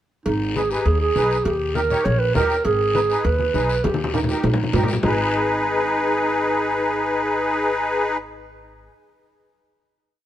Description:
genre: latin, cumbia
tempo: 201 BPM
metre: 4/4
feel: straight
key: G# harmonic minor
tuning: A4 = 440 Hz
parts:
  - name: breathy clarinet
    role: second line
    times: 0.3-8.2 s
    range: D#4 to C#5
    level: -23 LUFS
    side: right 3 dB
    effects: none
  - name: upright bass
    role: bass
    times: 0.3-8.9 s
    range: G#1 to G2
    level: -24 LUFS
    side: equal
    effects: none
  - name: cowbell and timbales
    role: percussion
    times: 0.3-5.1 s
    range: none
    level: -27 LUFS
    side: right 4 dB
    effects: none
  - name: guiro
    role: percussion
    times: 0.3-5.1 s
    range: none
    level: -34 LUFS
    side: left 6 dB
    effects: none
  - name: musette accordion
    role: accompaniment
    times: 0.6-8.2 s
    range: D#4 to C#5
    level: -22 LUFS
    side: left 2 dB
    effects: none
  - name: congas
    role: percussion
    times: 0.6-5.1 s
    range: none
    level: -26 LUFS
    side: left 3 dB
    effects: none
room: light reverb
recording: minimal, uncompressed stereo recording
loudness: -18 LUFS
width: side -12 dB against mid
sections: 0.3-5.0 groove; 5.0-7.4 final chord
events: drum fill 3.8-5.0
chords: 0.3 G#m; 1.5 D#7; 2.6 G#m; 3.8 D#; 5.0 G#m

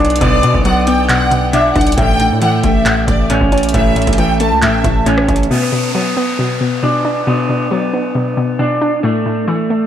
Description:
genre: hip hop, trap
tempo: 136 BPM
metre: 4/4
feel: half-time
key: B minor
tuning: A4 = 445 Hz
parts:
  - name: hollow square pluck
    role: accompaniment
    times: 0.0-9.9 s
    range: A2 to D4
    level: -18 LUFS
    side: left 2 dB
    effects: chorus, low-pass filter, dub echo
  - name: electric guitar at the edge of break-up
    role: arpeggios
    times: 0.0-9.9 s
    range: A3 to D4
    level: -16 LUFS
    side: equal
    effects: low-pass filter, dub echo
  - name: distorted 808-style bass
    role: bass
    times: 0.0-5.5 s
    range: A1 to B2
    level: -18 LUFS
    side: equal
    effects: distortion
  - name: booming analog drum machine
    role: drums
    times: 0.0-5.5 s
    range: handclaps, hi-hat, kick drum, rim click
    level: -18 LUFS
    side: equal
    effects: dub echo
  - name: rich studio violin section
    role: second line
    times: 0.2-5.0 s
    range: D5 to A5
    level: -18 LUFS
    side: right 1 dB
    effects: dub echo
  - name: downlifter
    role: sound effects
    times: 5.5-9.0 s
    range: none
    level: -26 LUFS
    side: equal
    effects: none
room: light reverb, digital ambience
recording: echo-heavy mix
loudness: -11 LUFS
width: side -10 dB against mid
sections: 0.0-5.5 A section; 5.5-9.9 B section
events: none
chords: 0.0 Bm; 2.0 A; 5.5 Bm; 9.0 A5

